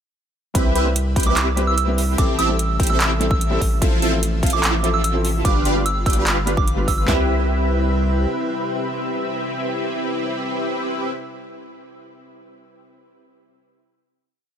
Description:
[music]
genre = future bass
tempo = 147 BPM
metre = 4/4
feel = half-time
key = C major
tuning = A4 = 440 Hz
[part]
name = felt-muted upright piano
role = accompaniment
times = 0.5-11.6 s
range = F3 to B4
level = -29 LUFS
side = left 1 dB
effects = sidechain pumping, digital delay
[part]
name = saturated sub bass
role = bass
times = 0.5-8.3 s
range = G1 to C2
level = -22 LUFS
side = equal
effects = sidechain pumping
[part]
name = airy breathy pad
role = sustained chords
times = 1.0-11.1 s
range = C3 to E5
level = -33 LUFS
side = left 2 dB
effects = chorus, vintage 12-bit sampler grit, sidechain pumping
[part]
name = supersaw stab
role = riff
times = 0.6-11.1 s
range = C4 to G5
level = -23 LUFS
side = equal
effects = analog chorus, sidechain pumping
[part]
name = big-room dance drum kit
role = drums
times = 0.6-7.2 s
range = handclaps, kick drum, snare drum, toms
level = -20 LUFS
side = equal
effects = none
[part]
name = big-room dance drum kit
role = drums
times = 0.6-7.0 s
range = handclaps, hi-hat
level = -24 LUFS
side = right 2 dB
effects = none
[part]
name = soft synth bell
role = melody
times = 1.3-7.0 s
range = D6 to E6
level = -26 LUFS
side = right 4 dB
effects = chorus, sidechain pumping, digital delay
[sound]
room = little or no reverb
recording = none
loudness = -17 LUFS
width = side -8 dB against mid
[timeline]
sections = 0.6-7.1 drop; 7.1-10.3 final chord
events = drop 0.6-7.1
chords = 0.6 Cmaj7; 2.2 Am7; 3.6 Fmaj7/A; 5.5 G7; 7.1 Cmaj7

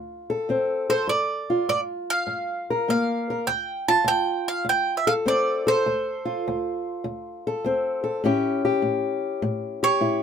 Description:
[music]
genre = acoustic country blues, solo or duo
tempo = 101 BPM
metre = 4/4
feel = swing 68% on 8ths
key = D minor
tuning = A4 = 440 Hz
[part]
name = fingerpicked old ladder-braced acoustic guitar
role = accompaniment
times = 0.0-10.2 s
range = D2 to Bb4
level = -24 LUFS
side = left 2 dB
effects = none
[part]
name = bowl-back mandolin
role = melody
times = 0.9-10.2 s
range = C5 to A5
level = -23 LUFS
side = right 4 dB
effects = none
[sound]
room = moderate booth ambience, RT60 0.2 s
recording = minimal, uncompressed stereo recording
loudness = -22 LUFS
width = side -7 dB against mid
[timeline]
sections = 0.0-10.2 A section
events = none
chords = 0.0 Dm7; 1.1 Gm7; 3.5 Dm7; 8.2 A7

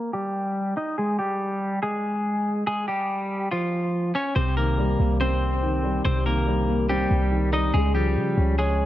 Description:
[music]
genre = hip hop, trap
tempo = 142 BPM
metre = 4/4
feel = half-time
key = C phrygian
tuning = A4 = 440 Hz
[part]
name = semi-hollow electric guitar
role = melody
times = 0.0-8.9 s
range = F3 to Eb5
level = -25 LUFS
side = equal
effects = low-pass filter, dub echo
[part]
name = dark concert grand piano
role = accompaniment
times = 4.4-8.9 s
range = C3 to Db5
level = -25 LUFS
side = left 1 dB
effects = low-pass filter, dub echo
[part]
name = clean 808-style bass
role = bass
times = 4.4-8.9 s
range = C2 to Db3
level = -24 LUFS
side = equal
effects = none
[sound]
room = light reverb, studio ambience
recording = echo-heavy mix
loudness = -22 LUFS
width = side -13 dB against mid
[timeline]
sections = 0.0-4.4 A section; 4.4-8.9 B section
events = filter sweep on clean electric guitar 0.0-4.4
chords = 0.0 Cm7 (rootless); 1.0 Db (rootless); 4.4 Cm7; 7.7 Db

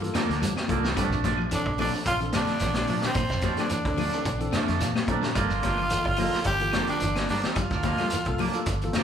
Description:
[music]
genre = afrobeat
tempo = 109 BPM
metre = 4/4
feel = swing 54% on 16ths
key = G dorian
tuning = A4 = 440 Hz
[part]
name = raspy tenor saxophone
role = melody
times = 0.0-8.6 s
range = Bb3 to G4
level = -29 LUFS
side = right 1 dB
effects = none
[part]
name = tine electric piano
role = accompaniment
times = 0.0-9.0 s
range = Bb3 to Bb5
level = -34 LUFS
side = equal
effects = medium stereo tremolo
[part]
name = electric guitar at the edge of break-up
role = arpeggios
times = 0.0-9.0 s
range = D3 to G3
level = -35 LUFS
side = left 3 dB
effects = none
[part]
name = fingered electric bass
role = bass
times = 0.0-8.9 s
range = G1 to G3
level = -32 LUFS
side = equal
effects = none
[part]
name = crunchy breakbeat drum kit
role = drums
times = 0.0-9.0 s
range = hi-hat, kick drum, snare drum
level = -30 LUFS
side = equal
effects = none
[part]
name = clean electric guitar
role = stabs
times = 0.1-9.0 s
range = F3 to D4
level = -32 LUFS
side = right 6 dB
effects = none
[part]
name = claves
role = percussion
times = 0.1-9.0 s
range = none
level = -44 LUFS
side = left 7 dB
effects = none
[part]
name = congas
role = percussion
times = 0.1-9.0 s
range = none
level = -34 LUFS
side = left 4 dB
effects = none
[part]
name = shekere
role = percussion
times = 0.1-9.0 s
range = none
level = -37 LUFS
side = right 2 dB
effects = none
[sound]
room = wet large studio reverb, RT60 1.2 s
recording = band playing live in one room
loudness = -23 LUFS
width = side -8 dB against mid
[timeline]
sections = 0.0-9.0 A section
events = tine electric piano fill 4.3-5.4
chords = 0.0 Gm7; 1.0 Bbmaj7; 5.4 Gm7

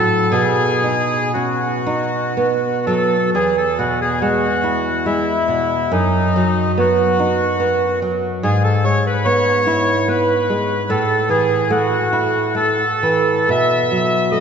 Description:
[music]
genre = romantic duo for bandoneon and classical guitar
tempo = 58-76 BPM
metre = 3/4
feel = rubato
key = E major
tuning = A4 = 436 Hz
[part]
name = bandoneon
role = melody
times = 0.0-14.4 s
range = D#4 to E5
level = -18 LUFS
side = left 2 dB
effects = none
[part]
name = nylon-string guitar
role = accompaniment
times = 0.0-14.4 s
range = E2 to E4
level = -17 LUFS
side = right 2 dB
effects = none
[sound]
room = wet church reverb, RT60 3.4 s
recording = recorded in a church or concert hall, nothing above 7.9 kHz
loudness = -15 LUFS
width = side -6 dB against mid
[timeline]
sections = 0.0-3.3 A section; 3.3-14.4 B section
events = none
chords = 0.3 B; 3.3 E; 5.9 B/F#; 8.4 E/G#; 10.9 F#m7/A; 13.5 B5

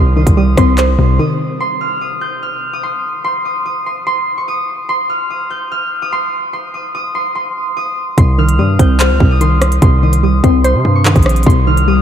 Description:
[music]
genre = hip hop, drill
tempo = 146 BPM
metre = 4/4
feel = half-time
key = C phrygian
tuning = A4 = 438 Hz
[part]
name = concert harp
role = melody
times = 0.0-12.0 s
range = C6 to G6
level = -18 LUFS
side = right 1 dB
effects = diffuse ambient delay
[part]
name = soft round pluck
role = accompaniment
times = 0.0-1.6, 8.2-12.0 s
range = C3 to C5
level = -15 LUFS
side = left 1 dB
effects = chorus
[part]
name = distorted 808-style bass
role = bass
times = 0.0-1.2, 8.2-12.0 s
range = Bb1 to C3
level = -12 LUFS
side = equal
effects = distortion
[part]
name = drill drum kit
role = drums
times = 0.3-0.9, 8.2-11.9 s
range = handclaps, hi-hat, kick drum, rim click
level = -13 LUFS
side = equal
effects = none
[sound]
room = moderate cathedral reverb, RT60 5.3 s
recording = dreamy mix soaked in reverb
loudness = -11 LUFS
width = side -9 dB against mid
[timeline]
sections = 0.0-1.6 A section; 1.6-12.0 A section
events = break 1.2-1.6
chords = 0.0 Cm; 1.6 N.C.; 8.2 Cm

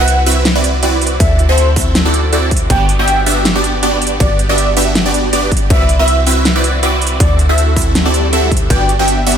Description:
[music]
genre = future bass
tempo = 160 BPM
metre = 4/4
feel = swing 55% on 16ths, half-time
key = G major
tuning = A4 = 441 Hz
[part]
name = warm velvety synth lead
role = melody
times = 0.0-9.2 s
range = C5 to G5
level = -20 LUFS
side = equal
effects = chorus, sidechain pumping, ping-pong delay
[part]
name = supersaw stab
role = riff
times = 0.0-9.4 s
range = B3 to E5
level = -15 LUFS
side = right 1 dB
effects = phaser, sidechain pumping
[part]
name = warm 808-style bass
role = bass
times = 0.0-9.4 s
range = G1 to D2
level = -15 LUFS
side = equal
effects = sidechain pumping
[part]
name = big-room dance drum kit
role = drums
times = 0.1-9.4 s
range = hi-hat, snare drum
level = -18 LUFS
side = right 1 dB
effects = studio reverb
[part]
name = electronic kick drum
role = drums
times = 1.2-8.8 s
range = none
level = -15 LUFS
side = equal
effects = studio reverb
[part]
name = swell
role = sound effects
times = 8.1-8.7 s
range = none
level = -22 LUFS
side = left 2 dB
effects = none
[sound]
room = little or no reverb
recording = none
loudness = -10 LUFS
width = side -8 dB against mid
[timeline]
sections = 0.0-9.4 A section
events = swell 8.1-8.7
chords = 0.0 Cmaj9#11; 1.2 D9; 2.7 Gmaj7; 5.7 Cmaj9#11; 7.2 D9; 8.7 Gmaj7

